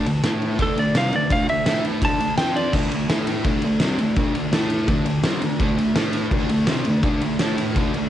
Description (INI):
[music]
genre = garage rock duo or trio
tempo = 168 BPM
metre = 4/4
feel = straight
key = unclear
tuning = A4 = 439 Hz
[part]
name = clean lap steel guitar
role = melody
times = 0.0-2.7 s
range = A4 to A5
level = -23 LUFS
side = right 1 dB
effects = cassette tape
[part]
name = fuzz guitar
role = riff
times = 0.0-8.1 s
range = C3 to A4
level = -21 LUFS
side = equal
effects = distortion, cassette tape
[part]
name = oversized low-tuned drum kit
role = drums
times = 0.1-8.0 s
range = crash cymbal, kick drum, ride cymbal, snare drum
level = -23 LUFS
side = equal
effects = none
[sound]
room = small room ambience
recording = home recording on cassette, nothing above 10.6 kHz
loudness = -18 LUFS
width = side -11 dB against mid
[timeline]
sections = 0.0-2.7 A section; 2.7-8.1 B section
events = electric slide guitar solo 0.0-2.7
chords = 0.2 A5; 0.6 D5; 1.7 A5; 2.0 D5; 2.4 F5; 2.7 D5; 3.1 A5; 3.5 D5; 4.5 A5; 4.9 D5; 6.0 A5; 6.3 D5; 7.4 A5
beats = 0.24 0.60 0.95 | 1.31 1.67 2.03 2.38 | 2.74 3.10 3.46 3.81 | 4.17 4.53 4.89 5.25 | 5.61 5.97 6.33 6.69 | 7.05 7.41 7.77